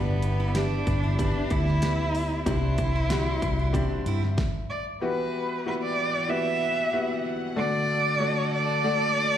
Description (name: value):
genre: piano-driven pop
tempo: 94 BPM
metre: 4/4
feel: straight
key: E minor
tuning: A4 = 441 Hz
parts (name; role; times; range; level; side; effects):
- warm cello; melody; 0.0-9.4 s; B3 to E5; -28 LUFS; right 1 dB; slapback echo, digital delay
- clear concert grand piano; accompaniment; 0.0-9.4 s; G2 to D5; -30 LUFS; left 3 dB; slapback echo
- warm chamber string section; sustained chords; 0.0-9.4 s; D3 to C6; -36 LUFS; right 1 dB; none
- fingerpicked steel-string acoustic guitar; riff; 0.0-4.2 s; D4 to G4; -36 LUFS; right 5 dB; slapback echo
- vintage muted fingered electric bass; bass; 0.0-4.4 s; G1 to G2; -26 LUFS; equal; none
- pop drum kit; drums; 0.2-4.5 s; hi-hat, kick drum, snare drum; -29 LUFS; equal; none
room: light reverb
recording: live gig heard through the venue's PA, recital hall reverb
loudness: -23 LUFS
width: side -10 dB against mid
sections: 0.0-5.0 A section; 5.0-9.4 B section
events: stop 4.4-5.0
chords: 0.0 G6; 2.5 C; 5.0 Emadd9; 7.6 D